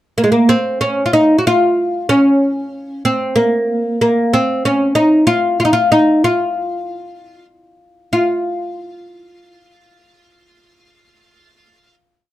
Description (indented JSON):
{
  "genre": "Arabic maqam ensemble",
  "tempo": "63 BPM (dotted quarters)",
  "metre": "6/8",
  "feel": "straight",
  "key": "unclear",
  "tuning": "A4 = 440 Hz",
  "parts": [
    { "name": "oud", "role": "solo", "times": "0.2-11.9 s", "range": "Ab3 to Gb4", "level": "-13 LUFS", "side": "equal", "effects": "none" }
  ],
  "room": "moderate studio ambience, RT60 0.5 s",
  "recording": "dry, close 1970s-style studio recording",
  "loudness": "-12 LUFS",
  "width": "side -14 dB against mid",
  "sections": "0.0-0.5 pickup bar; 0.5-8.1 A section; 8.1-11.9 final note",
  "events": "none",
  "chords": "none"
}